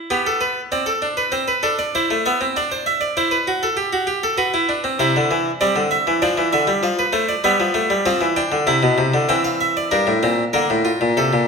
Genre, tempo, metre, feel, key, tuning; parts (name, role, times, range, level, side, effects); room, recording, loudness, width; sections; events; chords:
classical, baroque-style 3-part fugue for harpsichord; 98 BPM; 4/4; straight; C major; A4 = 443 Hz
harpsichord; solo; 0.0-11.5 s; G2 to A5; -16 LUFS; equal
wet recital hall reverb, RT60 1.4 s; -16 LUFS; side -5 dB against mid
0.0-9.9 A section; 9.9-11.5 B section
0.1 G/B; 1.3 Am/C; 2.6 D7; 3.8 G; 5.0 C; 6.2 Dm; 8.7 C; 9.9 Gm7 (rootless)